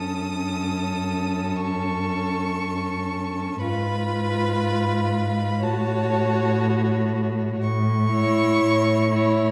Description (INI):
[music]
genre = classical, slow romantic movement for string quartet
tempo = 60 BPM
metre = 4/4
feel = rubato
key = unclear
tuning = A4 = 439 Hz
[part]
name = clear violin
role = melody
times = 0.0-9.5 s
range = A5 to D#6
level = -32 LUFS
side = equal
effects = none
[part]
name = rich violin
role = second line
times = 0.0-9.5 s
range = A4 to C#5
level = -31 LUFS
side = equal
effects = none
[part]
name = rich viola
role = accompaniment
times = 0.0-9.5 s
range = C#4 to F#4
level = -29 LUFS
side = equal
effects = none
[part]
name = rich cello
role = bass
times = 0.0-9.5 s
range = F#2 to A2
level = -26 LUFS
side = equal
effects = none
[sound]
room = wet recital hall reverb, RT60 1.5 s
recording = dark, warm production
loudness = -23 LUFS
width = mono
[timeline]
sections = 0.0-9.5 A section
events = none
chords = 0.0 F#m; 3.6 Fdim/Ab; 5.6 F#m/A; 7.6 A